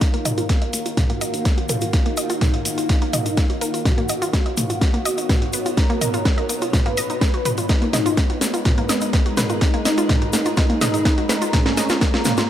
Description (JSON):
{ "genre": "melodic techno", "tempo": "125 BPM", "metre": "4/4", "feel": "straight", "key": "Eb minor", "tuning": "A4 = 440 Hz", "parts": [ { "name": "wide unison lead", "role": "melody", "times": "0.0-12.5 s", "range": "Bb3 to B4", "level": "-26 LUFS", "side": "equal", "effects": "ensemble chorus, sidechain pumping, analog delay" }, { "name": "evolving wavetable pad", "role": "sustained chords", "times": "0.0-12.5 s", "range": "Eb3 to Cb5", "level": "-30 LUFS", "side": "equal", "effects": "chorus, built-in reverb, sidechain pumping" }, { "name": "wide unison pluck", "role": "arpeggios", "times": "0.0-12.5 s", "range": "Bb3 to Eb5", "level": "-26 LUFS", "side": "equal", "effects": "sidechain pumping, analog delay" }, { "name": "electronic kick drum", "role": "drums", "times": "0.0-12.1 s", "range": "none", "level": "-19 LUFS", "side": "equal", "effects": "none" }, { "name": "techno drum kit", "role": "drums", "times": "0.0-12.5 s", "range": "hi-hat, snare drum, toms", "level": "-23 LUFS", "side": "equal", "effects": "none" }, { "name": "tube shaker", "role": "percussion", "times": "0.0-12.5 s", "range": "none", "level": "-30 LUFS", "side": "left 3 dB", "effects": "none" }, { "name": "granular cloud pad", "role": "texture", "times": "0.0-12.5 s", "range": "B3 to Bb5", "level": "-31 LUFS", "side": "equal", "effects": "built-in reverb, sidechain pumping" }, { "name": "swelling detuned saw bass", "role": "bass", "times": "0.1-12.5 s", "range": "none", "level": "barely audible", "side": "none", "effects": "none" } ], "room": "light reverb, digital ambience", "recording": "dry, gritty hardware recording, transformer saturation", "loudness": "-17 LUFS", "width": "side -11 dB against mid", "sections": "0.0-12.5 A section", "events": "build-up 0.0-12.5; drum fill 0.0-12.5; filter sweep on synth arpeggio sound 0.0-12.5; filter sweep on analog synth lead 0.0-12.5", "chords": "0.0 Ebm; 3.9 B; 7.7 Abm; 11.5 Bbm", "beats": "| 0.01 0.49 0.97 1.46 | 1.94 2.42 2.90 3.38 | 3.85 4.33 4.82 5.29 | 5.78 6.25 6.74 7.21 | 7.70 8.18 8.65 9.13 | 9.62 10.10 10.57 11.05 | 11.54 12.02 12.49" }